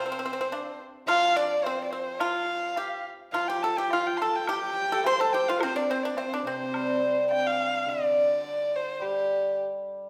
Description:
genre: chinese traditional, Chinese chamber ensemble.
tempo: 106 BPM.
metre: 2/4.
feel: rubato.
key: C zhi mode.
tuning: A4 = 440 Hz.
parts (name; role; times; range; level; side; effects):
warm erhu; melody; 0.0-9.6 s; G4 to C6; -30 LUFS; equal; none.
pipa; second line; 0.0-7.6 s; C4 to C5; -33 LUFS; equal; none.
hammered dulcimer; accompaniment; 0.0-10.1 s; C3 to D4; -32 LUFS; equal; none.
woodblock; percussion; 0.5-7.4 s; none; -41 LUFS; equal; none.
dark horsehead fiddle; second line; 3.3-7.6 s; C4 to C5; -35 LUFS; equal; none.
room: wet recital hall reverb, RT60 1.4 s.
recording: recorded in a church or concert hall.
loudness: -27 LUFS.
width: mono.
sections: 0.0-7.9 A section; 7.9-10.1 B section.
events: none.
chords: none.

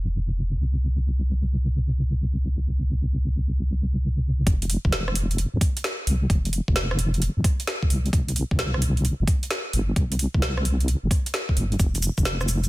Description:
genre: UK garage, two-step garage.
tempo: 131 BPM.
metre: 4/4.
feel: swing 67% on 16ths.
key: unclear.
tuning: A4 = 440 Hz.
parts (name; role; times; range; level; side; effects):
deep soft wobble bass; bass; 0.0-12.7 s; F1 to F2; -22 LUFS; equal; chorus.
electronic kick drum; drums; 4.5-12.2 s; none; -22 LUFS; equal; overdrive, small room reverb.
garage drum kit; drums; 4.5-12.7 s; hi-hat, rim click, shaker, snare drum; -28 LUFS; right 1 dB; overdrive, small room reverb.
room: little or no reverb.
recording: dense, heavily limited modern master.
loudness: -21 LUFS.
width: side -19 dB against mid.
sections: 0.0-4.5 A section; 4.5-12.7 B section.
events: drop 4.5-12.7.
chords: none.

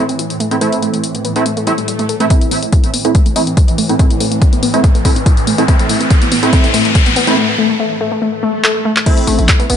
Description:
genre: driving peak-time techno.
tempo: 142 BPM.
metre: 4/4.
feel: straight.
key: A minor.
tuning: A4 = 436 Hz.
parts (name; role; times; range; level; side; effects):
rave stab; stabs; 0.0-9.8 s; A3 to E4; -17 LUFS; right 2 dB; chorus, built-in reverb, cassette tape, sidechain pumping, digital delay.
swarming drone; drone; 0.0-7.4 s; A2 to E3; -24 LUFS; equal; built-in reverb, sidechain pumping.
warbly dusty pluck; riff; 0.1-9.8 s; G3 to A4; -18 LUFS; left 2 dB; chorus, tube saturation, cassette tape, sidechain pumping, digital delay.
punchy analog drum machine; drums; 0.1-9.8 s; crash cymbal, handclaps, hi-hat; -19 LUFS; left 3 dB; overdrive.
swell and riser; sound effects; 1.6-9.1 s; none; -19 LUFS; left 2 dB; none.
electronic kick drum; drums; 2.3-9.6 s; none; -10 LUFS; equal; overdrive.
growling 808-style bass; bass; 9.3-9.8 s; A1; -14 LUFS; equal; sidechain pumping, low-pass filter.
room: light reverb, digital ambience.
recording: nothing above 11.0 kHz.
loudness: -10 LUFS.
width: side -8 dB against mid.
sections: 0.0-2.3 A section; 2.3-9.1 B section.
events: swell 1.6-2.3, 8.2-9.1; build-up 2.3-9.1; riser 2.3-7.4; filter sweep on synth arpeggio sound 2.3-9.1; drum fill 5.7-7.4, 8.6-9.1; break 7.4-9.1.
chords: 0.0 Am.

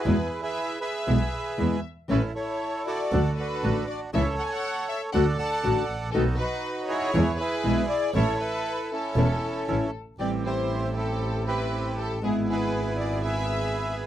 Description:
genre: tango.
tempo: 118 BPM.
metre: 4/4.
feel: rubato.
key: A major, A minor from 10.2 s.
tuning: A4 = 443 Hz.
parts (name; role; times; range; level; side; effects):
bandoneon; melody; 0.0-14.1 s; B3 to A5; -29 LUFS; right 2 dB; none.
clear studio violin section; second line; 0.0-14.0 s; G#4 to A5; -33 LUFS; left 5 dB; none.
nylon-string guitar; accompaniment; 0.1-14.1 s; B2 to F#4; -28 LUFS; left 2 dB; none.
bandoneon; stabs; 0.1-14.1 s; B3 to A4; -37 LUFS; right 5 dB; none.
clear double bass; bass; 0.1-14.1 s; E1 to E2; -28 LUFS; right 1 dB; none.
room: little or no reverb.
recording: dry, close 1970s-style studio recording.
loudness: -24 LUFS.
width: side -11 dB against mid.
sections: 0.0-10.2 A section; 10.2-14.1 B section.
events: none.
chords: 0.1 E; 2.1 A; 3.1 D; 4.1 A/C#; 5.1 D; 6.1 B7; 7.1 E; 8.1 A; 10.2 Am7; 12.2 E/G#.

